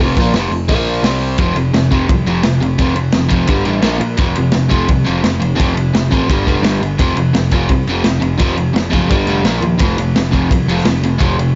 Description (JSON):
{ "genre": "garage rock duo or trio", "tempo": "171 BPM", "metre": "4/4", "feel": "straight", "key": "unclear", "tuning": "A4 = 440 Hz", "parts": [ { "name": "overdriven electric guitar", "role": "riff", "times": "0.0-11.5 s", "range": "F2 to C4", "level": "-18 LUFS", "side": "equal", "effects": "none" }, { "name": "fuzz picked electric bass", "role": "bass", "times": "0.0-11.5 s", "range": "F1 to Bb2", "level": "-22 LUFS", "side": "equal", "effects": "overdrive, tube saturation" }, { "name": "crunchy breakbeat drum kit", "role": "drums", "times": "0.0-11.5 s", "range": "hi-hat, kick drum, ride cymbal, snare drum", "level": "-19 LUFS", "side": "equal", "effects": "none" } ], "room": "light reverb", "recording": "nothing above 7.7 kHz", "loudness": "-15 LUFS", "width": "mono", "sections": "0.0-1.4 A section; 1.4-11.6 B section", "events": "none", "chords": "0.0 F5; 0.7 Bb5; 1.0 C5; 1.4 F5; 3.5 G5; 3.8 Bb5; 4.2 F5; 6.3 G5; 7.0 F5; 9.1 G5; 9.5 Bb5; 9.8 F5" }